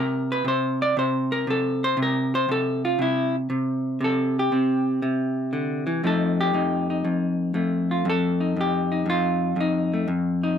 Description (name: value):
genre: solo jazz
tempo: 118 BPM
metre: 4/4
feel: swing 69% on 8ths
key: unclear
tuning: A4 = 442 Hz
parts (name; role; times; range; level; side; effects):
- vintage hollow-body jazz guitar; solo; 0.0-10.6 s; F2 to D5; -21 LUFS; equal; none
room: light reverb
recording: close, detailed microphones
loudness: -21 LUFS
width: side -8 dB against mid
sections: 0.0-10.6 A section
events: hollow-body jazz guitar solo 0.0-10.6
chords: 0.0 C7(no3); 6.0 F7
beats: 0.45 0.96 1.47 | 1.98 2.48 2.99 3.50 | 4.00 4.51 5.01 5.52 | 6.03 6.53 7.04 7.54 | 8.05 8.55 9.06 9.56 | 10.07 10.57